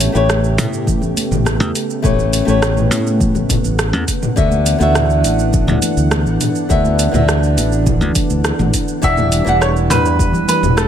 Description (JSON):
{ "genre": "sunset chillout", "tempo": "103 BPM", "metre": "4/4", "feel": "straight", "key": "unclear", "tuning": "A4 = 439 Hz", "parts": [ { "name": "flamenco guitar", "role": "accompaniment", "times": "0.0-10.9 s", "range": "D3 to F#5", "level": "-20 LUFS", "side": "moving between left 6 dB and right 4 dB", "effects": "auto-pan, tape echo" }, { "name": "lush unison pad", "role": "sustained chords", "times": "0.0-10.9 s", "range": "C#3 to F#5", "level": "-21 LUFS", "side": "equal", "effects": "chorus" }, { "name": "modern bright fingered electric bass", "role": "bass", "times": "0.0-10.9 s", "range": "E1 to A2", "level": "-16 LUFS", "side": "equal", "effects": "none" }, { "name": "deep house drum kit", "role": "drums", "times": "0.0-10.9 s", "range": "hi-hat, rim click, shaker, toms", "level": "-20 LUFS", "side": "right 1 dB", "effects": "none" }, { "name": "congas", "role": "percussion", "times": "0.6-10.9 s", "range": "none", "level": "-26 LUFS", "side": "left 3 dB", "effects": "none" }, { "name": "electronic kick drum", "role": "drums", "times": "0.9-10.3 s", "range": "none", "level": "-18 LUFS", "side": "equal", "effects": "none" }, { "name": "bright grand piano", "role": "melody", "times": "9.0-10.9 s", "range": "A4 to E5", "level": "-17 LUFS", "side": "equal", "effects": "tape echo" } ], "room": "moderate lush hall reverb, RT60 2.5 s", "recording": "none", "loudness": "-12 LUFS", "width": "side -9 dB against mid", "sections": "0.0-10.9 A section", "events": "none", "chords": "0.0 A9; 4.4 D69; 9.0 Em9" }